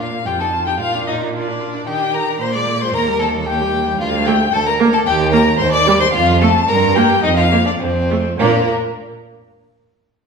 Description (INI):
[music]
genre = quick classical-period movement for string quartet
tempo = 112 BPM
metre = 2/4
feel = rubato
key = Bb major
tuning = A4 = 440 Hz
[part]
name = warm violin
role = melody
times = 0.0-8.7 s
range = Bb4 to D6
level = -19 LUFS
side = left 5 dB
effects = none
[part]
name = rich violin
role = second line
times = 0.0-8.7 s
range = Bb3 to D5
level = -20 LUFS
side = equal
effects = none
[part]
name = rich viola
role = accompaniment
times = 0.0-8.7 s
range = G3 to F4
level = -21 LUFS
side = right 3 dB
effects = none
[part]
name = rich cello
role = bass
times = 0.0-8.7 s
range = D2 to Eb3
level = -20 LUFS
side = right 4 dB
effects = none
[sound]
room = wet recital hall reverb, RT60 1.4 s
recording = recorded in a church or concert hall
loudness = -13 LUFS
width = side -5 dB against mid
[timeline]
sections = 0.0-8.4 A section; 8.4-9.5 B section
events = none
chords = 0.3 F7; 0.8 Bb; 1.9 Ebmaj7; 2.4 Bb7; 2.9 Eb; 4.0 Dm; 4.5 Bb/D; 5.1 Eb; 5.6 Cmadd9/Eb; 6.1 F; 6.7 Gm; 7.2 Fsus4; 7.8 F; 8.4 Bb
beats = 0.26 | 0.80 1.34 | 1.87 2.41 | 2.94 3.47 | 4.00 4.53 | 5.06 5.59 | 6.13 6.68 | 7.23 7.79 | 8.38